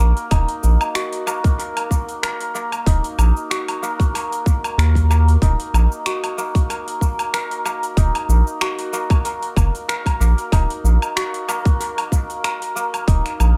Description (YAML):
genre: organic downtempo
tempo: 94 BPM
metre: 4/4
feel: swing 55% on 16ths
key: Eb minor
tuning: A4 = 440 Hz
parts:
  - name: santur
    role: arpeggios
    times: 0.0-13.6 s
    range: Bb3 to Bb4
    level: -26 LUFS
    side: equal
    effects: analog delay
  - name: round analog bass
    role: bass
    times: 0.0-13.5 s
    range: Eb1 to Eb2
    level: -17 LUFS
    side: equal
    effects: none
  - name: deep house drum kit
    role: drums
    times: 0.0-13.5 s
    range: cabasa, finger snaps, hi-hat, woodblock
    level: -28 LUFS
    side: equal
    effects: overdrive, dub echo
  - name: electronic kick drum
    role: drums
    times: 0.3-13.2 s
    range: none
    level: -18 LUFS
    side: equal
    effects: overdrive
room: digital ambience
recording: echo-heavy mix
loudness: -19 LUFS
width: mono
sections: 0.0-13.6 A section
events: none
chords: 0.0 Ebm